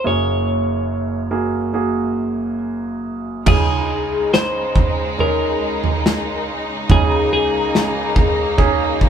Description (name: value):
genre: pop ballad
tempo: 70 BPM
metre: 4/4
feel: straight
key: unclear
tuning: A4 = 440 Hz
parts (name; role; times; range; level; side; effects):
- twelve-string electric guitar; melody; 0.0-9.1 s; Ab4 to Db5; -21 LUFS; left 3 dB; none
- warm grand piano; accompaniment; 0.0-9.1 s; Gb1 to Ab4; -22 LUFS; right 4 dB; none
- rich studio string section; sustained chords; 3.5-9.1 s; Db2 to Eb4; -23 LUFS; left 1 dB; none
- loose indie drum kit; drums; 3.5-9.1 s; crash cymbal, kick drum, snare drum, toms; -17 LUFS; right 1 dB; none
room: moderate studio reverb, RT60 0.5 s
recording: band playing live in one room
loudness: -16 LUFS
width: side -8 dB against mid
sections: 0.0-3.5 A section; 3.5-9.1 B section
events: none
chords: 0.0 Gbadd9; 3.5 Dbsus2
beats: | 0.04 0.88 1.74 2.60 | 3.47 4.33 5.19 6.05 | 6.90 7.75 8.59